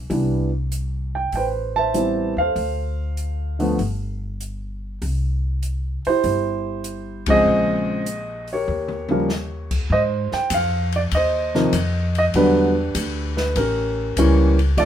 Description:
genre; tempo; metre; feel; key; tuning
jazz piano trio; 98 BPM; 4/4; swing 69% on 8ths; unclear; A4 = 440 Hz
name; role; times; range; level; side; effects
upright bass; bass; 0.0-14.9 s; G1 to Ab2; -24 LUFS; equal; none
warm upright piano; melody; 0.1-14.9 s; C3 to A5; -20 LUFS; right 1 dB; none
open jazz drum kit; drums; 0.1-14.9 s; crash cymbal, hi-hat, kick drum, ride cymbal, snare drum, toms; -30 LUFS; left 2 dB; none
room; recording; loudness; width
light reverb; minimal, uncompressed stereo recording; -19 LUFS; side -10 dB against mid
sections
0.0-9.9 A section; 9.9-14.9 B section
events
band accent 7.2-7.5; drum fill 8.7-9.3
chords
0.1 Cmaj7; 1.3 Am9; 2.6 Dm7; 3.8 N.C.; 5.0 C; 7.5 Bbm7; 8.7 Eb7; 9.9 Ab6; 12.3 Em7; 13.6 A7b9

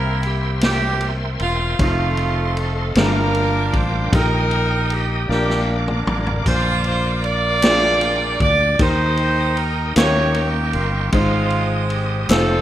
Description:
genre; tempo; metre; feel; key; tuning
slow gospel; 51 BPM (dotted quarters); 6/8; straight; Eb major; A4 = 440 Hz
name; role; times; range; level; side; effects
clear horn section; melody; 0.0-12.6 s; Ab3 to D5; -20 LUFS; right 2 dB; none
clear grand piano; accompaniment; 0.0-12.6 s; G2 to E5; -25 LUFS; left 1 dB; none
bright tonewheel organ; sustained chords; 0.0-12.6 s; A4 to Eb6; -28 LUFS; equal; slow rotary speaker, chorus vibrato
fingered electric bass; bass; 0.0-12.6 s; E1 to Eb2; -21 LUFS; equal; none
swinging big-band drum kit; drums; 0.2-12.5 s; kick drum, ride cymbal, snare drum, splash cymbal, toms; -22 LUFS; equal; none
group handclap; percussion; 7.6-12.6 s; none; -27 LUFS; left 5 dB; none
room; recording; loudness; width
light reverb; rough home demo mix; -16 LUFS; side -12 dB against mid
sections
0.0-12.6 A section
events
drum fill 5.3-6.5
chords
0.0 C7; 1.8 F7; 3.0 Gm7; 4.1 Eb/Bb; 5.3 Bb; 8.8 Eb; 10.0 Eb7; 11.1 Ab

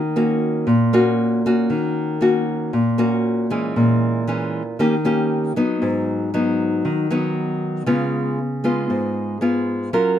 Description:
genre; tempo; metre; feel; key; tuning
bossa nova; 117 BPM; 4/4; straight; Eb minor; A4 = 438 Hz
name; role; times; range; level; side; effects
nylon-string guitar; solo; 0.0-10.2 s; Ab2 to Bb4; -18 LUFS; equal; none
room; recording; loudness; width
moderate echo chamber reverb, RT60 1.4 s; none; -18 LUFS; side -10 dB against mid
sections
0.0-1.7 A section; 1.7-10.2 B section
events
none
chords
0.0 Ebm7; 3.8 Bbm7b5; 4.8 Eb7; 5.8 Abm7; 7.9 Db7

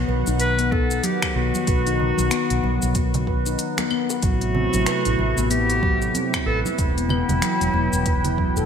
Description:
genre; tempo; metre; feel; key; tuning
organic downtempo; 94 BPM; 4/4; swing 60% on 16ths; B phrygian dominant; A4 = 436 Hz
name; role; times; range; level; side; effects
clear clarinet; melody; 0.0-8.7 s; E4 to B4; -25 LUFS; left 1 dB; digital delay
warm analog pad; sustained chords; 0.0-8.7 s; C3 to G5; -30 LUFS; left 1 dB; chorus, sidechain pumping
woody fretless electric bass; bass; 0.0-8.7 s; E1 to B1; -24 LUFS; equal; tube saturation, wide subtle chorus, sidechain pumping
handpan; arpeggios; 0.1-8.7 s; F#3 to B4; -25 LUFS; left 1 dB; vintage 12-bit sampler grit
congas and bongos; percussion; 0.1-8.4 s; none; -32 LUFS; right 3 dB; none
deep house drum kit; drums; 0.3-8.7 s; claves, finger snaps, hi-hat, shaker; -29 LUFS; left 1 dB; studio reverb
electronic kick drum; drums; 0.7-8.5 s; none; -24 LUFS; equal; studio reverb
room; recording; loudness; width
light reverb, studio ambience; bright 1980s-style digital production; -19 LUFS; side -7 dB against mid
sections
0.0-8.7 A section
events
none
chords
0.0 B; 4.2 Am7; 6.8 Em

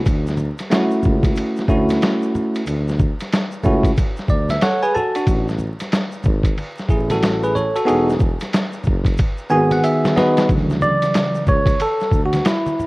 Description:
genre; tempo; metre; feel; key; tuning
hip hop, jazz-hop; 92 BPM; 4/4; swing 63% on 16ths; D lydian; A4 = 441 Hz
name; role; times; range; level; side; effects
mellow tuba; bass; 0.0-12.4 s; E1 to D2; -22 LUFS; equal; none
lo-fi sampler-style drum kit; drums; 0.1-12.6 s; hi-hat, kick drum, ride cymbal, snare drum; -20 LUFS; equal; none
tube shaker and congas; percussion; 0.1-12.9 s; none; -30 LUFS; left 1 dB; none
bell-like tine electric piano; accompaniment; 0.7-12.9 s; C#3 to A5; -18 LUFS; equal; none
room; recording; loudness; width
light reverb, digital ambience; worn, warbling old tape, cassette tape, vinyl crackle, warbly pitch drift; -16 LUFS; side -22 dB against mid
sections
0.0-10.5 A section; 10.5-12.9 B section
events
tine electric piano fill 4.0-5.3, 9.2-10.5; drum fill 9.2-10.5; tine electric piano solo 10.5-12.9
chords
0.1 Dmaj9; 5.3 B7(no3) (rootless); 7.9 Emaj9; 10.5 Dmaj9

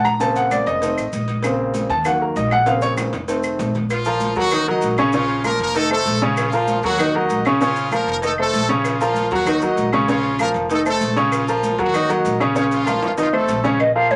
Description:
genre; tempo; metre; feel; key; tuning
latin, salsa; 194 BPM; 4/4; straight; Bb harmonic minor; A4 = 440 Hz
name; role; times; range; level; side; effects
clear concert grand piano; accompaniment; 0.0-14.2 s; Db3 to Bb5; -21 LUFS; equal; none
upright bass; bass; 0.0-14.2 s; F1 to Eb2; -30 LUFS; equal; none
claves; percussion; 0.1-14.0 s; none; -32 LUFS; equal; none
cowbell and bongos; percussion; 0.1-14.2 s; none; -32 LUFS; equal; none
maracas; percussion; 0.1-13.8 s; none; -42 LUFS; equal; none
congas; percussion; 0.2-14.2 s; none; -32 LUFS; equal; none
brilliant horn section; melody; 3.9-13.6 s; F3 to Eb5; -27 LUFS; equal; none
concert flute; melody; 13.8-14.2 s; Db5 to F5; -18 LUFS; equal; none
room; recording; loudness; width
moderate club reverb, RT60 0.8 s; none; -19 LUFS; mono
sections
0.0-3.9 A section; 3.9-13.8 B section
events
grand piano solo 0.0-3.9; drum fill 2.7-3.9, 12.9-13.8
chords
0.2 Bbmadd9; 0.8 F7; 1.4 Bbmadd9; 2.1 Ebm; 2.7 Bbmadd9; 3.3 F7; 3.9 Bb5; 4.5 Ebm; 5.1 Bbm; 5.8 F7; 6.4 Bbm; 7.0 Ebm; 7.6 Bbm; 8.2 F7; 8.8 Bbm; 9.5 Ebm; 10.1 Bbm; 10.7 F7; 11.3 Bbm; 11.9 Ebm; 12.6 Bbm; 13.2 F7

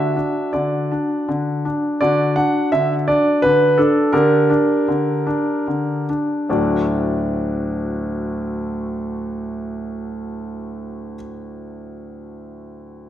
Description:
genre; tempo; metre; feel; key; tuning
classical-period piano sonatina; 69-85 BPM; 3/4; rubato; D major; A4 = 440 Hz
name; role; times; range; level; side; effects
clear grand piano; solo; 0.0-13.1 s; D2 to F#5; -18 LUFS; equal; none
room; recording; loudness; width
wet recital hall reverb, RT60 1.4 s; none; -17 LUFS; side -11 dB against mid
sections
0.0-2.0 A section; 2.0-6.5 B section; 6.5-11.4 C section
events
slowing down 0.9-6.5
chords
0.0 D; 4.1 Gm/D; 6.5 D

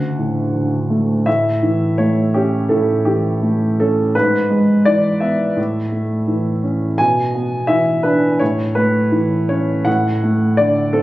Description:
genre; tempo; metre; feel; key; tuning
classical, romantic character piece for solo piano; 84 BPM; 4/4; rubato; unclear; A4 = 440 Hz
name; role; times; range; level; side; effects
warm baby grand piano; solo; 0.0-11.0 s; D2 to G#5; -14 LUFS; equal; none
room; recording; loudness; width
moderate recital hall reverb, RT60 1.5 s; recorded on a phone in the room, club reverb, compression; -14 LUFS; side -16 dB against mid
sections
0.0-11.0 A section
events
none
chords
0.0 D; 1.3 A; 4.1 E/G#; 5.6 A; 7.0 E7/B; 8.4 A; 9.9 D/A

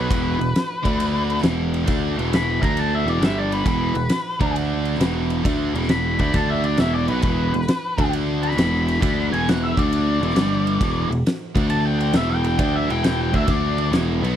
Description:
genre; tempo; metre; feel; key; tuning
blues rock power trio and southern rock; 134 BPM; 4/4; swing 68% on 8ths; unclear; A4 = 440 Hz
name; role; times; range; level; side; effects
octave-fuzz lead guitar; melody; 0.0-13.9 s; B4 to B5; -25 LUFS; left 1 dB; distortion
biting overdriven guitar; riff; 0.0-14.4 s; E2 to D4; -23 LUFS; equal; none
picked electric bass; bass; 0.0-14.4 s; E1 to D2; -24 LUFS; equal; none
huge arena drum kit; drums; 0.1-14.3 s; kick drum, ride cymbal, snare drum; -24 LUFS; equal; none
room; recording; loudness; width
little or no reverb; dry, close 1970s-style studio recording; -18 LUFS; side -10 dB against mid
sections
0.0-14.4 A section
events
lead electric guitar solo 0.0-14.4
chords
0.0 E5; 0.8 D5; 1.4 E5; 2.5 D5; 3.0 E5; 3.2 G5; 3.7 E5; 4.3 D5; 5.0 E5; 6.3 D5; 6.8 E5; 7.9 D5; 8.6 E5; 9.7 D5; 10.1 E5; 10.4 G5; 10.8 E5; 11.5 D5; 12.1 E5; 13.5 D5

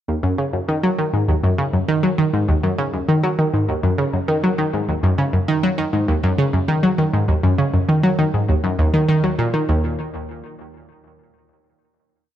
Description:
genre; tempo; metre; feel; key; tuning
ambient; 100 BPM; 4/4; straight; Eb minor; A4 = 440 Hz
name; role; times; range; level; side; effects
analog pluck; solo; 0.1-10.0 s; Eb2 to Gb3; -16 LUFS; equal; chorus, analog delay
room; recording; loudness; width
moderate plate reverb, RT60 2.6 s; none; -16 LUFS; side -11 dB against mid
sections
0.1-9.7 A section; 9.7-12.1 final note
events
none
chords
none

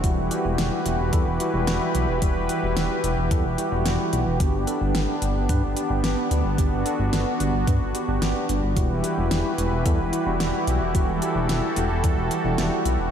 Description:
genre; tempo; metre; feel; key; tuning
synthwave; 110 BPM; 4/4; straight; E minor; A4 = 440 Hz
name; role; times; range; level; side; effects
warm analog pad; sustained chords; 0.0-13.1 s; E3 to B4; -26 LUFS; equal; chorus, sidechain pumping
tine electric piano; stabs; 0.0-13.0 s; G3 to B4; -29 LUFS; right 1 dB; medium stereo tremolo, tape echo
dark detuned saw bass; bass; 0.0-13.1 s; E1 to G2; -25 LUFS; equal; none
electronic kick drum; drums; 0.0-12.1 s; none; -22 LUFS; equal; studio reverb
pop drum kit; drums; 0.0-13.0 s; hi-hat, snare drum; -31 LUFS; equal; studio reverb
room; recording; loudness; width
moderate cathedral reverb, RT60 5.2 s; dreamy mix soaked in reverb; -21 LUFS; side -8 dB against mid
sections
0.0-13.1 A section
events
none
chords
0.0 Emadd9; 4.4 G; 8.8 Emadd9

